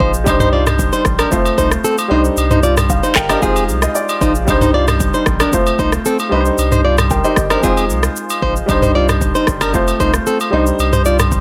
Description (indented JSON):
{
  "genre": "afrobeats",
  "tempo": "114 BPM",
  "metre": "4/4",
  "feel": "straight",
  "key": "C minor",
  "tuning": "A4 = 438 Hz",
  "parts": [
    { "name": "warm baby grand piano", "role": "accompaniment", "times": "0.0-11.4 s", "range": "G3 to G5", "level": "-20 LUFS", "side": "equal", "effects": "none" },
    { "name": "flamenco guitar", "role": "riff", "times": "0.0-11.2 s", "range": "C4 to D5", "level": "-20 LUFS", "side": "equal", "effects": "digital delay" },
    { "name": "warm sub bass", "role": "bass", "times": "0.0-11.4 s", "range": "F1 to C2", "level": "-21 LUFS", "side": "equal", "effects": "none" },
    { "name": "afro-pop drum kit", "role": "drums", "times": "0.0-11.4 s", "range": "handclaps, kick drum, rim click, shaker, toms", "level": "-20 LUFS", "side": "equal", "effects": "none" },
    { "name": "agogo bells", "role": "percussion", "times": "0.3-11.3 s", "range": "none", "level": "-26 LUFS", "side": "equal", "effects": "none" }
  ],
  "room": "light reverb, small room ambience",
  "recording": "none",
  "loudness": "-14 LUFS",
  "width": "mono",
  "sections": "0.0-11.4 A section",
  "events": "grand piano fill 2.9-4.5",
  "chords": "0.3 Cmadd9; 1.3 F; 2.1 Cmadd9; 3.4 Fm7; 4.5 Cmadd9; 5.5 F; 6.3 Cmadd9; 7.6 Fm7; 8.7 Cmadd9; 9.7 F; 10.5 Cmadd9",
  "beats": "| 0.27 0.79 1.32 1.84 | 2.37 2.90 3.42 3.95 | 4.48 5.00 5.53 6.05 | 6.58 7.11 7.63 8.16 | 8.69 9.21 9.74 10.27 | 10.79 11.32"
}